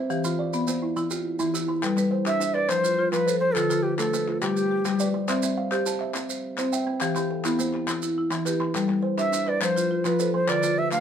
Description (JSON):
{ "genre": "southern african traditional, mbira-style interlocking cycle", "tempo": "139 BPM (dotted quarters)", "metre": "12/8", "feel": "straight", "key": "G mixolydian", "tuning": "A4 = 440 Hz", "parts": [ { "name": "kalimba", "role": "arpeggios", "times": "0.0-11.0 s", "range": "D3 to G5", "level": "-29 LUFS", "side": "right 5 dB", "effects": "none" }, { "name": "marimba with medium hard mallets", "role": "arpeggios", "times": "0.0-11.0 s", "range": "D3 to A5", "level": "-26 LUFS", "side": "left 4 dB", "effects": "none" }, { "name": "maracas", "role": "percussion", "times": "0.1-11.0 s", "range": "none", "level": "-35 LUFS", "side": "right 8 dB", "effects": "none" }, { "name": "group handclap", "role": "percussion", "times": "1.8-11.0 s", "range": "none", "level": "-34 LUFS", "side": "left 5 dB", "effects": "none" }, { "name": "Native American-style cedar flute", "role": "melody", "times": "2.3-5.1, 9.2-11.0 s", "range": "G4 to F5", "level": "-24 LUFS", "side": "right 1 dB", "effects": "none" } ], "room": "moderate small room reverb, RT60 0.5 s", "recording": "none", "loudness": "-22 LUFS", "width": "side -8 dB against mid", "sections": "0.0-1.8 A section; 1.8-11.0 B section", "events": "none", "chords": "0.1 Em; 1.8 G; 2.7 F; 3.6 Dm; 4.4 G; 5.3 C; 7.0 Em; 8.8 G; 9.6 F; 10.5 Dm" }